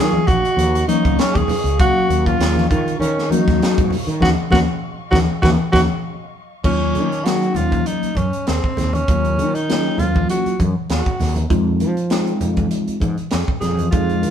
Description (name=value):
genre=electric jazz fusion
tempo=99 BPM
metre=4/4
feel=swing 54% on 16ths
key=Eb dorian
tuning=A4 = 440 Hz
part: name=warm tenor saxophone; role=melody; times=0.0-14.3 s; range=C4 to Ab4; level=-21 LUFS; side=right 1 dB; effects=none
part: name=mellow tine electric piano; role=accompaniment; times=0.0-14.3 s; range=Gb3 to F5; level=-21 LUFS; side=left 2 dB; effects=medium stereo tremolo, phaser
part: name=dark chamber string section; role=sustained chords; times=0.0-6.6 s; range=Gb3 to Db6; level=-33 LUFS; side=left 2 dB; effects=none
part: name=fretless electric bass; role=bass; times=0.0-14.3 s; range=Bb1 to F3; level=-21 LUFS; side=right 1 dB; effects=none
part: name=congas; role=percussion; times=0.1-13.9 s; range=none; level=-23 LUFS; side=left 2 dB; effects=none
part: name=crisp fusion drum kit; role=drums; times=0.3-14.3 s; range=crash cymbal, hi-hat, kick drum, snare drum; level=-22 LUFS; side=right 1 dB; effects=none
room=moderate stone room reverb, RT60 1.1 s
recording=band playing live in one room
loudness=-15 LUFS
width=side -8 dB against mid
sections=0.0-6.6 A section; 6.6-14.3 B section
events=band accent 4.2-6.6; drum fill 5.4-6.6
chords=0.0 Ebm9; 6.6 Ebm7; 11.5 Fm7